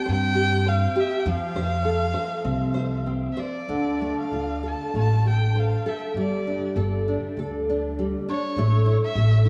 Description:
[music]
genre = fado-style ballad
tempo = 99 BPM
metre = 4/4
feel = uneven beats, rubato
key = F major, D minor from 3.7 s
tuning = A4 = 436 Hz
[part]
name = warm erhu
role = melody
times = 0.0-9.5 s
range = C#5 to A5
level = -32 LUFS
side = equal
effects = analog delay
[part]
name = nylon-string guitar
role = accompaniment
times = 0.0-9.5 s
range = D3 to C5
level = -29 LUFS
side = equal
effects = ensemble chorus
[part]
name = upright bass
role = bass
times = 0.1-9.5 s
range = G1 to G2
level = -26 LUFS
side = equal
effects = none
[sound]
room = moderate church reverb, RT60 2.9 s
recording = dreamy mix soaked in reverb, small room ambience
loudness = -24 LUFS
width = mono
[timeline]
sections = 0.0-3.7 A section; 3.7-9.5 B section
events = none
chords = 0.0 C5; 1.3 F5; 3.7 Dm; 6.2 Gsus2; 8.6 A5

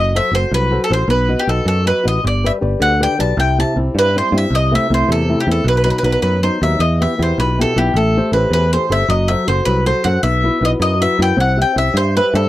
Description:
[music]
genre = italian folk, Italian serenade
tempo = 105 BPM (dotted quarters)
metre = 6/8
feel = straight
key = unclear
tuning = A4 = 440 Hz
[part]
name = bowl-back mandolin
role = melody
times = 0.0-12.5 s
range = G4 to A5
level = -17 LUFS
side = equal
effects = none
[part]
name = flamenco guitar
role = accompaniment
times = 0.0-12.5 s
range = B2 to E5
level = -19 LUFS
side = left 2 dB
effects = none
[part]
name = picked electric bass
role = bass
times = 0.0-12.5 s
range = F#1 to G2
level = -17 LUFS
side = equal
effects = none
[sound]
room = little or no reverb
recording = dry, close 1970s-style studio recording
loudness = -13 LUFS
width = side -14 dB against mid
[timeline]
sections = 0.0-12.5 A section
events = none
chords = 0.0 F#dim; 1.1 B; 2.2 G; 3.4 C; 4.5 Am/C; 5.7 B; 6.8 Em; 8.0 Am7; 9.1 F#dim; 10.2 Bsus4; 11.4 C

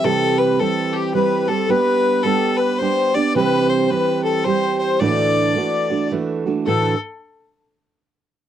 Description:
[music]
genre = celtic folk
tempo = 109 BPM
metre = 3/4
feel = swing 62% on 8ths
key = D mixolydian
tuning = A4 = 440 Hz
[part]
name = clear fiddle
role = melody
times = 0.0-7.0 s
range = G4 to D5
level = -21 LUFS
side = left 3 dB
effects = none
[part]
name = accordion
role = second line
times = 0.0-7.0 s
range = G4 to D5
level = -22 LUFS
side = left 7 dB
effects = light tremolo tuning
[part]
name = fingerpicked steel-string acoustic guitar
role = accompaniment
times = 0.0-6.9 s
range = D2 to G4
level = -19 LUFS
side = right 5 dB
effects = none
[sound]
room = light reverb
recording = dry, close 1970s-style studio recording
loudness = -16 LUFS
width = side -10 dB against mid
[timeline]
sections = 0.0-6.7 A section; 6.7-8.3 B section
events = none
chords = 0.0 C; 1.7 G; 3.4 C; 5.0 Dadd9

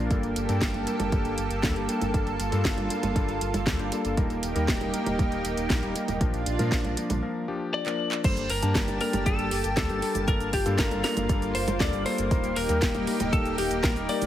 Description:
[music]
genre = italo disco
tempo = 118 BPM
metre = 4/4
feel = straight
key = G minor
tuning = A4 = 441 Hz
[part]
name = lush unison pad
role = sustained chords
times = 0.0-14.3 s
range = Bb3 to A5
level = -31 LUFS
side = right 1 dB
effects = chorus
[part]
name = warm electric grand piano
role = stabs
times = 0.0-14.3 s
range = F3 to A5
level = -32 LUFS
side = left 4 dB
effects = none
[part]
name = round analog bass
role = bass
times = 0.0-14.3 s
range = Eb1 to Bb2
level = -31 LUFS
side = equal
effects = none
[part]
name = electronic kick drum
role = drums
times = 0.1-13.9 s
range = none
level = -27 LUFS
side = equal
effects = none
[part]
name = house drum kit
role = drums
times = 0.1-14.3 s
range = cabasa, congas, crash cymbal, handclaps, hi-hat, snare drum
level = -31 LUFS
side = right 2 dB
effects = none
[part]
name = lightly driven lead guitar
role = melody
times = 7.7-14.3 s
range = G4 to D5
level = -30 LUFS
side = left 2 dB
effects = digital delay
[sound]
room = light reverb, digital ambience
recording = heavily compressed radio sound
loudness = -24 LUFS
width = side -12 dB against mid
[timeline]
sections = 0.0-8.2 A section; 8.2-14.3 B section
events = break 7.2-8.2; drum fill 7.9-8.2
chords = 0.1 Gmadd9; 4.2 Eb; 6.2 Bb; 8.2 Gmadd9; 12.3 Eb

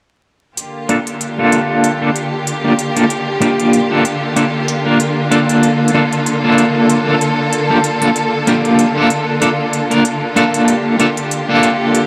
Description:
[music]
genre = glitch hop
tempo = 95 BPM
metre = 4/4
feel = swing 56% on 16ths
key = G minor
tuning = A4 = 441 Hz
[part]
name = clear studio string section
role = sustained chords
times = 0.6-12.1 s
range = D3 to A4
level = -19 LUFS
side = equal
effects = vintage 12-bit sampler grit
[part]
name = electronic hi-hat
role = drums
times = 0.6-12.1 s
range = none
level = -26 LUFS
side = equal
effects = none
[part]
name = electric guitar at the edge of break-up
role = stabs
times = 0.9-12.1 s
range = Bb3 to Bb4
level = -16 LUFS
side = equal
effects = tremolo, low-pass filter, tape echo
[sound]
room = wet plate reverb, RT60 2.9 s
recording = dreamy mix soaked in reverb, vinyl crackle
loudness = -14 LUFS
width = mono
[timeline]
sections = 0.6-12.1 A section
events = none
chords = 0.6 Gm7

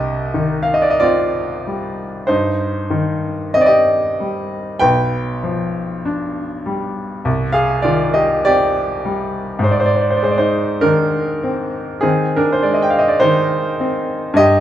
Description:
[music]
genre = classical, romantic nocturne for solo piano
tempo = 44-52 BPM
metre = 4/4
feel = rubato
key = C minor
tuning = A4 = 440 Hz
[part]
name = bright grand piano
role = solo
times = 0.0-14.6 s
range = B1 to G5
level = -15 LUFS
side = equal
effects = none
[sound]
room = moderate recital hall reverb, RT60 1.8 s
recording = minimal, uncompressed stereo recording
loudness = -15 LUFS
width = side -11 dB against mid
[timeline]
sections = 0.0-14.6 A section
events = none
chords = 0.0 Cm; 4.8 G7/B; 7.3 Cm; 9.6 Ab

